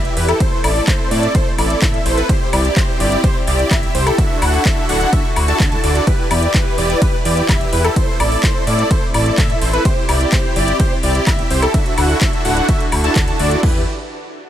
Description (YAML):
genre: EDM, festival progressive house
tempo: 127 BPM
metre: 4/4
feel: straight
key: E minor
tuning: A4 = 441 Hz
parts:
  - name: clear studio string section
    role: sustained chords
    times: 0.0-13.9 s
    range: C3 to B4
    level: -26 LUFS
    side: equal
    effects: sidechain pumping
  - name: wide unison lead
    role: arpeggios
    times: 0.0-13.8 s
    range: A4 to A5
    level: -22 LUFS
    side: equal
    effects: ensemble chorus, sidechain pumping, tape echo
  - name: supersaw chords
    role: riff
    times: 0.0-13.8 s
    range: D4 to A5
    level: -20 LUFS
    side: equal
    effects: sidechain pumping, tape echo
  - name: fat analog bass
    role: bass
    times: 0.0-13.9 s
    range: D1 to A2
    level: -18 LUFS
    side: equal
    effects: tube saturation, sidechain pumping
  - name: house drum kit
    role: drums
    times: 0.1-13.6 s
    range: handclaps, hi-hat, ride cymbal, woodblock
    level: -23 LUFS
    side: left 1 dB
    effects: overdrive
  - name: house drum kit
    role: drums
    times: 0.4-13.7 s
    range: crash cymbal, kick drum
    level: -17 LUFS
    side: equal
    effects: overdrive
room: little or no reverb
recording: none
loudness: -13 LUFS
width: side -11 dB against mid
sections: 0.0-13.6 A section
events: drop 0.0-13.6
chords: 0.4 Am; 2.3 C; 4.2 Dadd9; 6.1 Em; 8.0 Am; 9.9 C; 11.7 Dadd9; 13.6 Em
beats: | 0.40 0.88 1.35 1.82 | 2.29 2.77 3.24 3.71 | 4.18 4.66 5.13 5.60 | 6.07 6.54 7.02 7.49 | 7.96 8.44 8.91 9.38 | 9.85 10.32 10.80 11.27 | 11.74 12.21 12.69 13.16 | 13.63